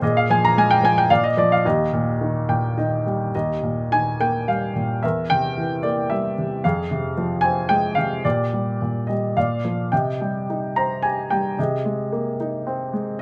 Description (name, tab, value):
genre	classical, lyrical solo piano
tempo	110 BPM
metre	3/4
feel	rubato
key	Eb major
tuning	A4 = 440 Hz
part	warm baby grand piano	solo	0.0-13.2 s	Eb2 to Bb5	-21 LUFS	equal	none
room	light reverb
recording	none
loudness	-21 LUFS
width	mono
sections	0.0-3.3 A section; 3.3-13.2 A section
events	grand piano fill 2.2-3.3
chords	0.0 Bb5; 1.1 Bb; 1.6 Eb; 5.0 C7/E; 6.6 Fm; 8.2 Bb6; 9.4 Bb; 9.9 Cm; 11.6 Abadd9/C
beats	| 0.02 0.56 1.10 | 1.65 2.20 2.77 | 3.34 3.91 4.48 | 5.03 5.57 6.11 | 6.64 7.17 7.70 | 8.25 8.81 9.36 | 9.92 10.48 11.04 | 11.58 12.12 12.67 | 13.21